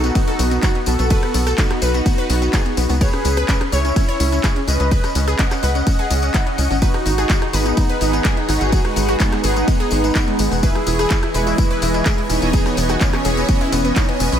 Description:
progressive house; 126 BPM; 4/4; straight; E major; A4 = 440 Hz
soft supersaw; melody; 0.0-14.3 s; E3 to F#5; -22 LUFS; equal; ping-pong delay
wide unison pluck; arpeggios; 0.0-14.4 s; G#3 to C#5; -23 LUFS; equal; sidechain pumping, ping-pong delay
tight sequencer bass; bass; 0.0-14.4 s; E1 to C#2; -20 LUFS; equal; sidechain pumping
house drum kit; drums; 0.0-14.4 s; handclaps, hi-hat, ride cymbal, rim click; -26 LUFS; left 1 dB; sidechain pumping on hats, sidechain pumping on cymbals
tambourine; percussion; 0.0-14.4 s; -30 LUFS; left 4 dB
electronic kick drum; drums; 0.2-14.1 s; -18 LUFS; equal
lush unison pad; sustained chords; 7.2-14.4 s; E3 to G#5; -24 LUFS; right 1 dB; chorus, phaser, sidechain pumping
backwards swelling texture; texture; 8.1-14.4 s; C#5 to C#6; -32 LUFS; right 1 dB; built-in reverb, analog chorus, sidechain pumping
light reverb, digital ambience; -15 LUFS; side -9 dB against mid
0.0-14.4 A section
0.0 B7; 3.0 C#m7; 6.8 G#m7

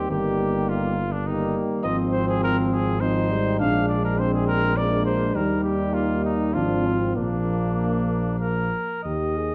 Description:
classical, brass quintet; 92-104 BPM; 3/4; rubato; A4 = 440 Hz
warm trumpet; melody; 0.0-9.5 s; D4 to F5; -30 LUFS; equal
mellow flugelhorn; second line; 0.0-8.7 s; G3 to Eb4; -32 LUFS; equal
mellow French horn; accompaniment; 0.0-9.5 s; G3 to Ab4; -32 LUFS; equal
warm euphonium; accompaniment; 0.0-8.7 s; Eb3 to Ab3; -30 LUFS; equal
warm tuba; bass; 0.0-9.5 s; G1 to Eb2; -28 LUFS; equal
wet recital hall reverb, RT60 1.4 s; dark, warm production; -23 LUFS; mono
0.0-9.1 A section
0.1 Eb/G; 1.9 Fm7/Ab; 3.6 Bb7; 5.4 Eb; 6.5 Fm/Ab; 7.2 Bb

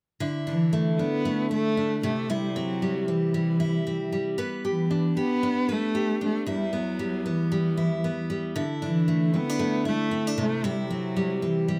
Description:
pop; 115 BPM; 4/4; swing 60% on 16ths; A4 = 440 Hz
picked steel-string acoustic guitar; accompaniment; 0.2-11.8 s; E2 to B4; -30 LUFS; equal
dark cello; melody; 0.5-11.8 s; E3 to B3; -28 LUFS; equal
moderate studio ambience, RT60 0.5 s; -26 LUFS; mono
0.2-11.8 A section
0.2 Dsus2; 2.0 C; 4.4 G; 6.5 Em; 8.6 Dsus2; 10.4 C

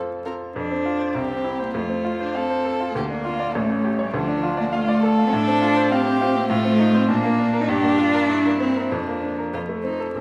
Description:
quick classical-period movement for piano trio; 100 BPM; 2/4; straight; F major; A4 = 440 Hz
bright baby grand piano; accompaniment; 0.0-10.2 s; A1 to F5; -26 LUFS; equal
warm violin; melody; 0.3-10.2 s; C#4 to Bb4; -30 LUFS; equal
warm cello; second line; 0.5-10.2 s; F3 to Eb4; -24 LUFS; equal
wet recital hall reverb, RT60 1.4 s; vinyl crackle; -21 LUFS; mono
0.6-10.1 A section
0.0 F; 0.6 F5; 1.2 C; 1.8 F; 2.9 Dm; 3.5 A7; 4.1 Dm; 5.3 F/A; 6.5 F7/A; 7.1 Bb; 7.7 Gm; 8.3 C7/G; 8.9 Bb/F; 9.5 F

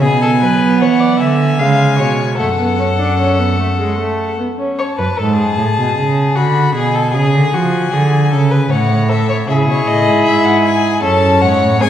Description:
classical, baroque-style fugue for string quartet; 77 BPM; 3/4; straight; F# minor; A4 = 440 Hz
warm violin; melody; 0.0-11.9 s; C#5 to B5; -20 LUFS; left 5 dB
dark violin; second line; 0.0-11.9 s; F#4 to E#5; -18 LUFS; left 2 dB
rich viola; accompaniment; 0.0-4.8, 9.5-11.9 s; G#3 to E4; -16 LUFS; right 2 dB
warm cello; bass; 0.0-11.9 s; F#2 to F#3; -15 LUFS; right 2 dB
wet recital hall reverb, RT60 1.8 s; heard from further back in the room; -11 LUFS; side -10 dB against mid
0.0-4.8 A section; 4.8-11.9 B section
0.0 G#dim/B; 1.6 C#7; 2.4 F#m; 4.8 F#m (rootless); 6.4 Bm/D; 7.2 C#; 8.7 F#m/A; 9.5 C#m (rootless); 11.0 F#m

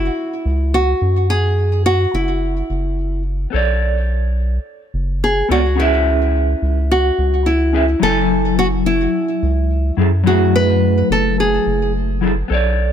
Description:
sunset chillout; 107 BPM; 4/4; straight; F# minor; A4 = 439 Hz
nylon-string guitar; melody; 0.0-11.9 s; E4 to B4; -18 LUFS; equal; digital delay
round analog bass; bass; 0.0-12.9 s; F#1 to F#2; -17 LUFS; equal
mellow electric guitar; accompaniment; 3.5-12.9 s; F#3 to G#5; -19 LUFS; moving between left 5 dB and right 6 dB; auto-pan, digital delay
light reverb, small room ambience; -14 LUFS; side -9 dB against mid
0.0-12.9 A section
0.0 F#5; 3.5 Bm9; 5.8 C#m7; 8.0 F#m9

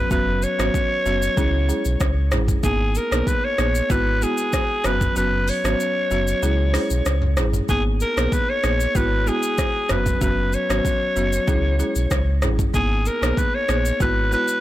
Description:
afrobeats; 95 BPM; 4/4; straight; A4 = 440 Hz
growling alto saxophone; melody; 0.0-14.6 s; G#4 to C#5; -23 LUFS; left 1 dB; tape echo
sub bass with octave; bass; 0.0-14.4 s; F#1 to C#2; -22 LUFS; equal
folk marimba with medium mallets; accompaniment; 0.1-14.5 s; F#3 to G#4; -26 LUFS; right 1 dB
afro-pop drum kit; drums; 0.1-14.6 s; hi-hat, kick drum, rim click, shaker, toms; -24 LUFS; equal; overdrive
little or no reverb; blown-out, overdriven recording, overdrive; -18 LUFS; side -14 dB against mid
0.0-14.6 A section
kick muted 5.2-7.7
0.0 F#sus4; 1.4 C#m; 2.6 G#madd9; 3.9 Eadd9/G#; 4.8 F#sus4; 6.4 C#m; 7.7 G#madd9; 9.0 Eadd9/G#; 9.9 F#sus4; 11.5 C#m; 12.7 G#madd9; 14.0 Eadd9/G#

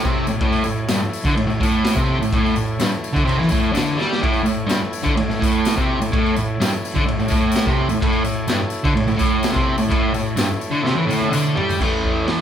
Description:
garage rock duo or trio; 126 BPM; 4/4; straight; A mixolydian; A4 = 439 Hz
combo organ; sustained chords; 0.0-12.4 s; E4 to C#5; -30 LUFS; left 2 dB
fuzz guitar; riff; 0.0-12.4 s; G2 to A3; -18 LUFS; equal; distortion
raw garage drum kit; drums; 0.1-12.4 s; crash cymbal, hi-hat, kick drum, snare drum, toms; -22 LUFS; equal
tambourine; percussion; 0.1-11.8 s; -35 LUFS; left 8 dB
light reverb; band playing live in one room; -17 LUFS; side -9 dB against mid
0.0-11.8 A section
drum fill 4.0, 10.8-11.8
0.0 A

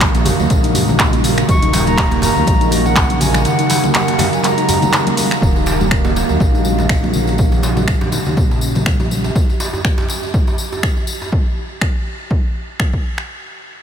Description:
afro house; 122 BPM; 4/4; swing 56% on 16ths; Eb minor; A4 = 439 Hz
ethereal airy pad; sustained chords; 0.0-9.3 s; Db3 to Bb4; -22 LUFS; right 1 dB; ensemble chorus, built-in reverb, sidechain pumping
smooth gliding synth bass; bass; 0.0-9.3 s; Eb1 to Eb2; -20 LUFS; equal; sidechain pumping
deep house drum kit; drums; 0.0-13.3 s; finger snaps, handclaps, hi-hat; -21 LUFS; equal; overdrive, studio reverb
electronic kick drum; drums; 0.0-13.0 s; -16 LUFS; equal; overdrive, studio reverb
congas; percussion; 0.0-9.3 s; -25 LUFS; left 3 dB
djembe; percussion; 0.0-11.3 s; -24 LUFS; right 3 dB
tambourine; percussion; 0.0-11.3 s; -28 LUFS; left 4 dB
handpan; arpeggios; 0.1-7.1 s; Db3 to Eb4; -20 LUFS; right 1 dB; sidechain pumping, low-pass filter, tape echo
concert flute; melody; 1.5-5.1 s; Gb5 to Db6; -23 LUFS; equal; tape echo
moderate huge ambient reverb, RT60 7.6 s; dreamy mix soaked in reverb; -13 LUFS; side -8 dB against mid
0.0-5.4 A section; 5.4-13.3 B section
drop 0.0-5.4; filter sweep on handpan 5.4-7.4
0.0 Ebm7

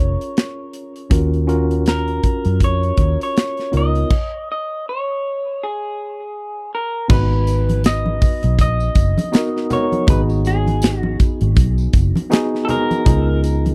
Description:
lush 1970s-style soul; 80 BPM; 4/4; swing 58% on 16ths; A4 = 440 Hz
electric guitar through a small old amp; melody; 0.0-13.4 s; G#4 to D#5; -26 LUFS; equal; tape echo
tine electric piano; accompaniment; 0.0-13.7 s; B3 to B4; -25 LUFS; equal; overdrive
vintage muted fingered electric bass; bass; 0.0-13.7 s; E#1 to F#2; -20 LUFS; equal
modern studio drum kit; drums; 0.2-13.7 s; crash cymbal, hi-hat, kick drum, snare drum; -18 LUFS; equal
congas; percussion; 7.1-13.7 s; -27 LUFS; equal
tambourine; percussion; 7.1-13.6 s; -43 LUFS; equal
little or no reverb; dry, close 1970s-style studio recording; -18 LUFS; mono
0.0-7.1 A section; 7.1-13.7 B section
stop 4.1-7.1
0.0 F#maj9 (rootless); 1.1 D#m7; 3.7 C#13; 7.1 G#m9; 10.1 G#m7; 13.1 C#13

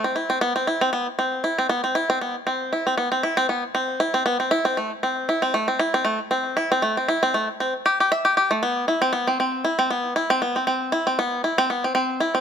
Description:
folktronica; 117 BPM; 4/4; swing 56% on 16ths; C major; A4 = 436 Hz
bluegrass banjo; solo; 0.0-12.4 s; A3 to E5; -20 LUFS; equal
moderate echo chamber reverb, RT60 1.4 s; -20 LUFS; side -8 dB against mid
0.4-12.4 A section

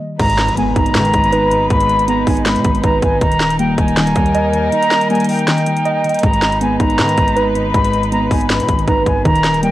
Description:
hip hop, trap; 159 BPM; 4/4; half-time; G# harmonic minor; A4 = 441 Hz
muted felt-like synth keys; accompaniment; 0.0-9.7 s; G#2 to D#5; -20 LUFS; equal; chorus, low-pass filter
muted felt-like synth keys; arpeggios; 0.0-9.7 s; D#3 to D#5; -19 LUFS; right 2 dB; chorus, low-pass filter, analog delay
concert flute; second line; 0.2-9.7 s; G5 to B5; -18 LUFS; equal; analog delay
warm studio string section; sustained chords; 0.2-9.7 s; G3 to B4; -22 LUFS; left 1 dB
distorted 808-style bass; bass; 0.2-9.7 s; D#1 to D#3; -23 LUFS; equal; distortion
trap drum kit; drums; 0.2-9.7 s; crash cymbal, handclaps, hi-hat, kick drum, snare drum; -18 LUFS; equal
impact; sound effects; 0.2-1.7 s; -28 LUFS; equal
light reverb; dry, gritty hardware recording; -12 LUFS; side -15 dB against mid
0.2-9.7 A section
stop 0.0; impact 0.2-1.7; kick muted 4.7-6.2
0.2 G#m; 3.2 D#; 6.2 G#m

